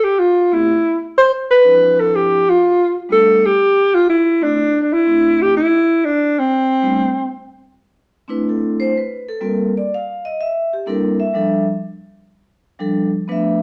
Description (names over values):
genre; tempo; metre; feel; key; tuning
jazz; 124 BPM; 4/4; swing 68% on 8ths; C major; A4 = 443 Hz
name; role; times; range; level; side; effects
mellow alto saxophone; melody; 0.0-7.3 s; C4 to C5; -14 LUFS; equal; none
vibraphone with medium mallets; accompaniment; 0.5-13.6 s; F3 to F5; -22 LUFS; equal; none
room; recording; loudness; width
wet studio reverb, RT60 0.9 s; none; -16 LUFS; mono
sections
0.0-7.5 A section; 7.5-13.6 B section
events
none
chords
0.0 Am9; 1.6 Dm9; 2.6 G9; 3.6 C6; 5.5 N.C.; 6.5 G9; 7.5 C6; 9.4 Gm11; 10.4 C13; 11.3 F69